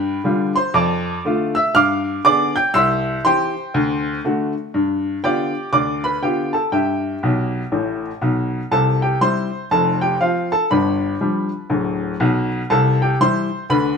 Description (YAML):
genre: jazz, stride piano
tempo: 120 BPM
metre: 4/4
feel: swing 62% on 8ths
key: C major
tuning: A4 = 440 Hz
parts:
  - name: clear upright piano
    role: solo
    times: 0.0-14.0 s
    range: D1 to G6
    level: -16 LUFS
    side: equal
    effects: none
room: wet stone room reverb, RT60 1.1 s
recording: band playing live in one room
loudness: -16 LUFS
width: side -5 dB against mid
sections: 0.0-8.7 A section; 8.7-14.0 B section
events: upright piano fill 7.2-8.7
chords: 0.0 G7; 0.8 Dm/F; 1.8 G7b9; 2.7 C; 3.7 D7; 4.7 G7; 6.7 Em; 7.7 G; 8.7 C; 9.7 F; 10.7 G7; 12.7 C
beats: 0.25 | 0.75 1.25 1.75 2.25 | 2.75 3.25 3.74 4.24 | 4.74 5.24 5.74 6.23 | 6.73 7.23 7.73 8.22 | 8.72 9.22 9.72 10.22 | 10.71 11.21 11.71 12.21 | 12.70 13.20 13.70